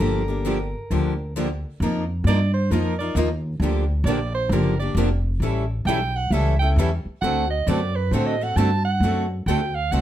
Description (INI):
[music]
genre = acoustic string swing (jazz manouche)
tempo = 133 BPM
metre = 4/4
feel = swing 63% on 8ths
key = G minor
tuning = A4 = 440 Hz
[part]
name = picked steel-string acoustic guitar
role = melody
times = 0.0-1.3 s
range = Bb4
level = -30 LUFS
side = left 2 dB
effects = plate reverb
[part]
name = picked steel-string acoustic guitar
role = accompaniment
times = 0.0-10.0 s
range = D3 to Bb4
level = -26 LUFS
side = left 6 dB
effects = none
[part]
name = picked steel-string acoustic guitar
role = accompaniment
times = 0.0-10.0 s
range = D3 to Bb4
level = -28 LUFS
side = right 6 dB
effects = none
[part]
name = upright bass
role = bass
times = 0.0-10.0 s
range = F1 to A2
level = -22 LUFS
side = equal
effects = none
[part]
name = clear soprano saxophone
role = second line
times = 2.3-10.0 s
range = Bb4 to A5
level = -26 LUFS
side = right 5 dB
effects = none
[sound]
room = light reverb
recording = none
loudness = -20 LUFS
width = side -12 dB against mid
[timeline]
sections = 0.0-1.8 A section; 1.8-10.0 B section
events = soprano saxophone solo 1.8-10.0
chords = 0.0 Gm7; 1.8 F7sus4; 3.6 Gm7; 5.4 A7; 7.2 D7